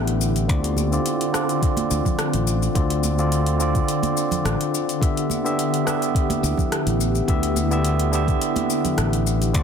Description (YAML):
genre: sunset chillout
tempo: 106 BPM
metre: 4/4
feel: straight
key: unclear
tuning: A4 = 440 Hz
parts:
  - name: barky tine electric piano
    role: accompaniment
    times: 0.0-9.6 s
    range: D3 to E5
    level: -24 LUFS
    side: moving between left 5 dB and right 5 dB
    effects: auto-pan, low-pass filter, ping-pong delay
  - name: ethereal airy pad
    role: sustained chords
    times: 0.0-9.6 s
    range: D3 to G4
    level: -26 LUFS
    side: left 1 dB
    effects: ensemble chorus, built-in reverb
  - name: fingered electric bass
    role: bass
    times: 0.0-9.6 s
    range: A1 to D2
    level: -22 LUFS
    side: left 1 dB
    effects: none
  - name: smooth R&B drum kit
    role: drums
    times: 0.1-9.6 s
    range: hi-hat, rim click, shaker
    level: -29 LUFS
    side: left 3 dB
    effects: none
  - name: electronic kick drum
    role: drums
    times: 0.5-9.6 s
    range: none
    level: -22 LUFS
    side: equal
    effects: none
  - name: congas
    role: percussion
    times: 0.8-9.0 s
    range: none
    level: -31 LUFS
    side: right 4 dB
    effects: none
room: moderate concert hall reverb, RT60 2.2 s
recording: dense, heavily limited modern master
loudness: -19 LUFS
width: side -7 dB against mid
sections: 0.0-9.6 A section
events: filter sweep on tine electric piano 0.0-9.6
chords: 0.5 Dm7; 5.0 A9sus4